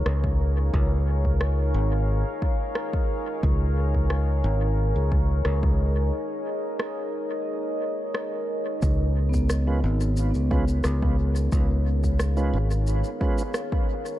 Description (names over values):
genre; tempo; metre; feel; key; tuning
ambient dub; 89 BPM; 4/4; straight; Db mixolydian; A4 = 441 Hz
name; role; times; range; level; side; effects
deep dark ambient pad; sustained chords; 0.0-14.2 s; Eb4 to F5; -30 LUFS; left 1 dB; chorus, built-in reverb
fingered electric bass; bass; 0.0-13.0 s; Ab1 to Db2; -22 LUFS; equal; none
electronic rim click and shaker; drums; 0.1-14.2 s; none; -34 LUFS; equal; overdrive, small room ambience, dub echo
electronic kick drum; drums; 0.2-13.9 s; none; -25 LUFS; equal; overdrive, small room ambience
vibraphone with soft mallets; arpeggios; 9.3-14.2 s; Cb4; -32 LUFS; equal; tape echo
tonewheel organ; stabs; 9.7-13.4 s; Ab3 to Cb5; -32 LUFS; right 4 dB; chorus vibrato, dub echo
room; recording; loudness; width
little or no reverb; dark, warm production; -22 LUFS; side -14 dB against mid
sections
0.0-14.2 A section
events
break 6.1-8.8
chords
0.0 Db7